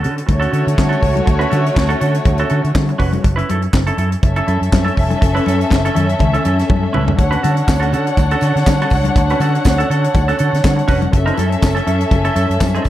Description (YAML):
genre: disco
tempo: 122 BPM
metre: 4/4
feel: swing 56% on 16ths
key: D major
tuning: A4 = 441 Hz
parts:
  - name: semi-hollow electric guitar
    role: accompaniment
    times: 0.0-12.9 s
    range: C#4 to B4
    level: -22 LUFS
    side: right 4 dB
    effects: spring reverb
  - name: fingered electric bass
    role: bass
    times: 0.0-12.9 s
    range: F1 to D3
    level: -17 LUFS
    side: equal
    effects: none
  - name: tight funk drum kit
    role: drums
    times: 0.0-12.9 s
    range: handclaps, hi-hat, kick drum, snare drum, toms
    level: -17 LUFS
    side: equal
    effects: none
  - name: warm studio violin section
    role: second line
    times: 0.3-12.9 s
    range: A3 to F#5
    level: -19 LUFS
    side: left 1 dB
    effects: none
  - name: congas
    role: percussion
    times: 0.3-12.7 s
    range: none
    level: -25 LUFS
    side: left 6 dB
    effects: none
  - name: tambourine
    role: percussion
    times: 7.4-12.9 s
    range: none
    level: -38 LUFS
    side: right 8 dB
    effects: none
room: light reverb, small room reverb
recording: dark, warm production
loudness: -13 LUFS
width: side -13 dB against mid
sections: 0.0-12.9 A section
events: drum fill 6.7-7.2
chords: 0.0 Dmaj7; 3.2 F#m7; 7.2 Dmaj7; 11.1 F#m7